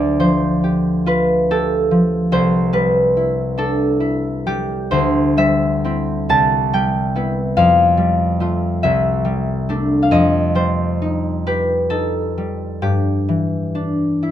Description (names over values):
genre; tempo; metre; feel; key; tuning
classical, solo harp piece; 43-49 BPM (dotted quarters); 6/8; rubato; unclear; A4 = 441 Hz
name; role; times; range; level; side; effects
concert harp; solo; 0.0-14.3 s; C2 to A5; -15 LUFS; equal; none
room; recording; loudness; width
light reverb; close, detailed microphones; -15 LUFS; side -11 dB against mid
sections
0.0-14.3 A section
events
none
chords
0.0 Dm11; 2.3 Cadd9; 4.9 D11; 6.3 Cmaj7; 7.6 Fadd9; 8.8 C69; 10.1 F9; 12.8 G5